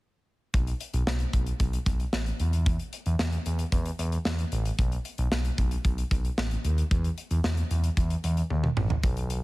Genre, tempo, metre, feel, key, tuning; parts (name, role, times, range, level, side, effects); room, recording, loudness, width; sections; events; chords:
synth-pop; 113 BPM; 4/4; straight; A4 = 439 Hz
smooth gliding synth bass; bass; 0.5-9.4 s; A1 to E2; -27 LUFS; equal
modern studio drum kit; drums; 0.5-9.4 s; hi-hat, kick drum, snare drum, toms; -29 LUFS; equal
little or no reverb; heavily compressed radio sound, multiband compression, lossy compression artefacts; -25 LUFS; side -20 dB against mid
0.5-9.0 A section
drum fill 8.5-9.0